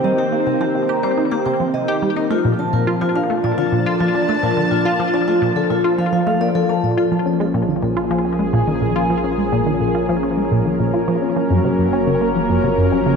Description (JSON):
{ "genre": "ambient, sequencer-driven space music", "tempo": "106 BPM", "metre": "4/4", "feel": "straight", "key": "Bb minor from 6.8 s", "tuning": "A4 = 440 Hz", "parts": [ { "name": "lush unison pad", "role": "sustained chords", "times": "0.0-13.2 s", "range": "Eb3 to A5", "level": "-18 LUFS", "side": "equal", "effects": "chorus" }, { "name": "vibraphone with medium hard mallets", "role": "arpeggios", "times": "0.0-6.7 s", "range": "F4 to Bb5", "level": "-22 LUFS", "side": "moving between left 5 dB and right 2 dB", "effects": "auto-pan, ping-pong delay" }, { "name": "tight sequenced synth", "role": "riff", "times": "0.0-13.1 s", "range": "Gb2 to G4", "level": "-20 LUFS", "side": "equal", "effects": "chorus, cassette tape, ping-pong delay" }, { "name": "round analog bass", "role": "bass", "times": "6.8-13.2 s", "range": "Gb1 to Bb1", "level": "-34 LUFS", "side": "equal", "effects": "none" }, { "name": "wind-like tuned noise texture", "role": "texture", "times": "8.8-13.2 s", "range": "Db5", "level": "-42 LUFS", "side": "left 2 dB", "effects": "none" } ], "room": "wet lush hall reverb, RT60 2.9 s", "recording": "dreamy mix soaked in reverb", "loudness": "-16 LUFS", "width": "side -5 dB against mid", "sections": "0.0-6.8 A section; 6.8-13.2 B section", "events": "fade-in on analog synth bass 6.8-13.2", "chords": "0.0 Cm7; 2.3 Bbmaj7; 6.8 Bbm7; 11.4 Gbmaj7" }